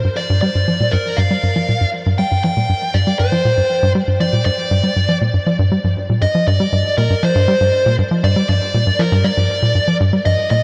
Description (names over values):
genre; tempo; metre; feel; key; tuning
ambient; 119 BPM; 4/4; straight; G minor; A4 = 438 Hz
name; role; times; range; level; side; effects
tight sequencer bass; riff; 0.0-10.6 s; G2 to G3; -18 LUFS; equal; tape echo
dark smooth lead guitar; melody; 0.2-10.6 s; Bb4 to G5; -20 LUFS; equal; overdrive, tape echo
room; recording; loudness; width
moderate huge ambient reverb, RT60 8.9 s; none; -16 LUFS; mono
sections
0.0-10.6 A section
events
none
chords
0.0 Gm